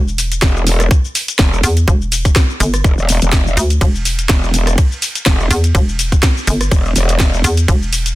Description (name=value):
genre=bass house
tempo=124 BPM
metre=4/4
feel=swing 55% on 16ths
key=E phrygian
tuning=A4 = 440 Hz
part: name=hollow knocking FM bass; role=bass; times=0.0-8.2 s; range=E1 to E2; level=-15 LUFS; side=equal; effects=tube saturation, sidechain pumping
part: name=garage drum kit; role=drums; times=0.1-8.1 s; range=hi-hat, ride cymbal, rim click, shaker, snare drum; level=-18 LUFS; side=equal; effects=overdrive, small room ambience
part: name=growl bass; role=bass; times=0.4-7.4 s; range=E1 to F1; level=-14 LUFS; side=equal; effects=distortion, chorus, overdrive, sidechain pumping
part: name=electronic kick drum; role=drums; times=0.4-7.8 s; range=none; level=-12 LUFS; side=equal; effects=overdrive, small room ambience
room=digital ambience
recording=dense, heavily limited modern master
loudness=-11 LUFS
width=side -17 dB against mid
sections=0.0-8.2 A section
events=none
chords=none